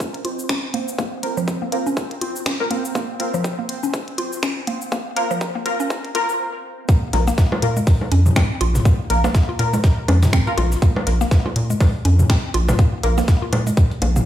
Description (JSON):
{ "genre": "minimal techno", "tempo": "122 BPM", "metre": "4/4", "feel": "swing 58% on 16ths", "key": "unclear", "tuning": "A4 = 440 Hz", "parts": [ { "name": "electronic kick drum", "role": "drums", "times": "0.0-13.9 s", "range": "none", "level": "-16 LUFS", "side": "equal", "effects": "high-pass filter on kick" }, { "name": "minimal click drum kit", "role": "drums", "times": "0.0-14.2 s", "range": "cabasa, finger snaps, hi-hat", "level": "-29 LUFS", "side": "left 1 dB", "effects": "high-pass filter on hats, high-pass filter on perc, high-pass filter on snare" }, { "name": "pulsing gated texture", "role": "texture", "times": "0.0-6.4 s", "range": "C4 to C5", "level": "-30 LUFS", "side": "right 4 dB", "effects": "chorus, built-in reverb, sidechain pumping" }, { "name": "mallet-like synth pluck", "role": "riff", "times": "0.2-14.2 s", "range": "F3 to F4", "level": "-25 LUFS", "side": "equal", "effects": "chorus, sidechain pumping, ping-pong delay" }, { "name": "filtered dub chord stab", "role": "stabs", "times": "1.2-13.1 s", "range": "Bb3 to Bb4", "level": "-26 LUFS", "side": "left 2 dB", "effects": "wide subtle chorus, dub echo" }, { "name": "breakbeat sampler-style drum kit", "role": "drums", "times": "6.9-14.2 s", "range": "hi-hat, snare drum", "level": "-35 LUFS", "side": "equal", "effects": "sidechain pumping on hats, high-pass filter on hats, low-pass filter on hats, high-pass filter on snare, low-pass filter on snare" }, { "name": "rubbery square bass", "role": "bass", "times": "7.1-14.2 s", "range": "Bb1 to Bb2", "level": "-17 LUFS", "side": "equal", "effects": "sidechain pumping" }, { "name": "electronic bongos and toms", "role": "percussion", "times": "7.1-14.2 s", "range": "none", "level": "-24 LUFS", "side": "equal", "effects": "dub echo" } ], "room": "light reverb", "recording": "played on a big sound system in a bare room, stone room reverb, high-pass filter", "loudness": "-17 LUFS", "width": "side -12 dB against mid", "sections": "0.0-6.9 A section; 6.9-14.3 B section", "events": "build-up 0.0-6.9; filter sweep on synth arpeggio sound 0.0-6.9; stop 6.4-6.9; drop 6.9-14.3", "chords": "0.0 Bb5" }